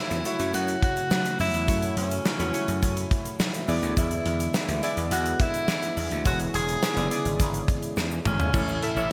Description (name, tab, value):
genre	1980s-style pop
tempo	105 BPM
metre	4/4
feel	straight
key	unclear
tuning	A4 = 442 Hz
part	warm tenor saxophone	melody	0.0-9.1 s	C#4 to G#4	-32 LUFS	equal	none
part	warm analog keys	accompaniment	0.0-9.1 s	A2 to E5	-34 LUFS	equal	chorus
part	warm analog pad	sustained chords	0.0-9.1 s	C#3 to E4	-37 LUFS	equal	chorus
part	gritty slap bass	bass	0.1-9.1 s	E1 to F#3	-32 LUFS	equal	overdrive
part	big rock drum kit	drums	0.1-9.0 s	crash cymbal, hi-hat, kick drum, snare drum, tambourine, toms	-30 LUFS	equal	gated reverb
part	egg shaker	percussion	0.1-9.1 s	none	-46 LUFS	equal	none
part	buzzing marimba with medium hard mallets	second line	4.0-7.6 s	E5 to G#5	-45 LUFS	equal	none
room	moderate lush hall reverb, RT60 2.1 s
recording	bright 1980s-style digital production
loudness	-26 LUFS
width	mono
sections	0.0-8.5 A section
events	drum fill 8.0-8.5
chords	0.0 F#m7; 3.7 E7; 8.5 A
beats	0.54 1.11 | 1.68 2.25 2.83 3.40 | 3.97 4.54 5.11 5.68 | 6.25 6.83 7.40 7.97 | 8.54 9.11